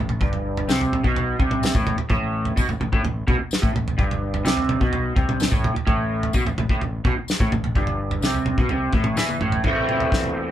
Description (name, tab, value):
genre	psychedelic rock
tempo	127 BPM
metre	4/4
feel	straight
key	A minor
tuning	A4 = 440 Hz
part	electric guitar through a small old amp	riff	0.0-10.5 s	G2 to E4	-23 LUFS	equal	rotary speaker
part	growling fingered electric bass	bass	0.0-10.5 s	G1 to E2	-28 LUFS	equal	overdrive
part	damped 70s drum kit	drums	0.1-10.4 s	kick drum, snare drum, toms	-22 LUFS	equal	none
part	tambourine	percussion	0.7-9.3 s	none	-35 LUFS	left 6 dB	none
room	moderate small room reverb, RT60 0.6 s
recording	band playing live in one room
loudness	-19 LUFS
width	side -11 dB against mid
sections	0.0-9.7 A section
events	drum fill 9.2-9.7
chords	0.0 Am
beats	| 0.21 0.69 1.16 1.63 | 2.10 2.57 3.04 3.51 | 3.98 4.45 4.92 5.39 | 5.87 6.34 6.81 7.28 | 7.75 8.23 8.70 9.18 | 9.65 10.13